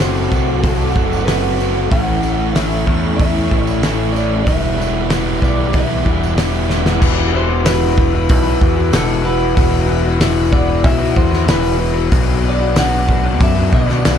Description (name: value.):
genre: rock, shoegaze and dream pop.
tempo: 94 BPM.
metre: 4/4.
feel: straight.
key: E minor.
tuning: A4 = 440 Hz.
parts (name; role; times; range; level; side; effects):
electric guitar through a small old amp; melody; 0.0-14.2 s; A4 to F#5; -23 LUFS; right 3 dB; tape echo.
icy glass pad; sustained chords; 0.0-14.2 s; F#4 to E6; -28 LUFS; right 1 dB; chorus, built-in reverb.
overdriven electric guitar; riff; 0.0-7.0 s; E2 to F#4; -22 LUFS; right 14 dB; reverse reverb.
raw garage guitar; riff; 0.0-14.2 s; B2 to B4; -19 LUFS; left 8 dB; overdrive, wide subtle chorus.
growling picked electric bass; bass; 0.0-14.2 s; E1 to B2; -18 LUFS; equal; overdrive.
loose indie drum kit; drums; 0.0-14.2 s; crash cymbal, hi-hat, kick drum, snare drum; -17 LUFS; equal; none.
tambourine; percussion; 0.0-14.2 s; none; -38 LUFS; right 12 dB; none.
room: studio reverb.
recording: dark, warm production.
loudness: -13 LUFS.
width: side -8 dB against mid.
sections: 0.0-7.0 A section; 7.0-14.2 B section.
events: drum fill 6.7-7.0.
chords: 0.0 F#dim; 1.9 A; 4.5 Em7; 7.0 Esus2; 12.1 Bm7.